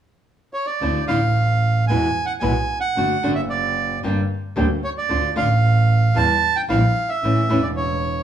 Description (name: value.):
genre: tango.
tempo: 112 BPM.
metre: 4/4.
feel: rubato.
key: D harmonic minor.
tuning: A4 = 440 Hz.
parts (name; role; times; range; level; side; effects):
bandoneon; melody; 0.5-8.2 s; C#5 to A5; -21 LUFS; right 3 dB; none.
flamenco guitar; accompaniment; 0.8-7.6 s; B2 to G4; -23 LUFS; left 1 dB; none.
clear double bass; bass; 0.8-8.2 s; E1 to E2; -20 LUFS; right 2 dB; none.
room: moderate large studio reverb, RT60 1.0 s.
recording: band playing live in one room.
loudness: -17 LUFS.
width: side -9 dB against mid.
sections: 0.8-8.2 A section.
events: none.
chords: 0.0 N.C.; 0.8 Dmadd9; 1.9 E; 3.0 D/F#; 4.0 Gm; 5.1 Dm; 6.2 Edim; 7.2 A.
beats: 0.28 | 0.81 1.36 1.90 2.43 | 2.97 3.50 4.03 4.56 | 5.10 5.62 6.15 6.68 | 7.22 7.75.